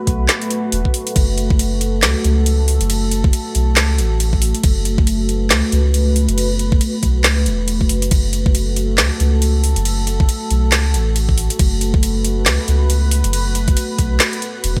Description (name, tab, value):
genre	deep dubstep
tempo	138 BPM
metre	4/4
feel	swing 58% on 16ths, half-time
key	F# minor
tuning	A4 = 441 Hz
part	deep dark ambient pad	sustained chords	0.0-14.8 s	A3 to B4	-25 LUFS	equal	chorus, built-in reverb
part	soft dub sub bass	bass	0.1-14.8 s	E1 to C#2	-19 LUFS	equal	tube saturation
part	electronic kick drum	drums	0.1-14.8 s	none	-18 LUFS	equal	overdrive
part	garage drum kit	drums	0.1-14.7 s	crash cymbal, handclaps, hi-hat, snare drum	-22 LUFS	equal	overdrive
room	little or no reverb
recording	bright 1980s-style digital production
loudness	-16 LUFS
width	mono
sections	0.0-14.8 A section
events	none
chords	0.0 F#m